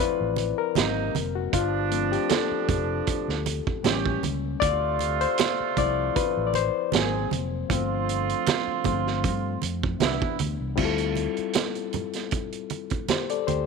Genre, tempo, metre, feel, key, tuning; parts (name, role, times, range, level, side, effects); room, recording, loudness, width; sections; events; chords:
lush 1970s-style soul; 78 BPM; 4/4; swing 54% on 16ths; A4 = 440 Hz
barky reed electric piano; accompaniment; 0.0-13.7 s; E3 to D5; -28 LUFS; left 14 dB; overdrive
mellow horn section; stabs; 0.0-10.4 s; G2 to G#4; -30 LUFS; right 14 dB
fingered electric bass; bass; 0.0-13.7 s; F1 to G2; -30 LUFS; equal
vintage drum kit; drums; 0.4-13.7 s; crash cymbal, hi-hat, kick drum, snare drum; -27 LUFS; right 6 dB
congas; percussion; 0.4-13.7 s; -32 LUFS; right 11 dB
light reverb, studio ambience; 1960s-style stereo with parts hard left and right; -23 LUFS; side -4 dB against mid
0.0-10.8 A section; 10.8-13.7 B section
reed electric piano solo 0.0-10.8
0.0 Dm9; 0.8 G#9; 1.5 G7sus4; 3.8 A7b9; 4.6 Dm9; 6.9 G#9; 7.7 G7sus4; 10.0 Cmaj7; 10.8 Dm11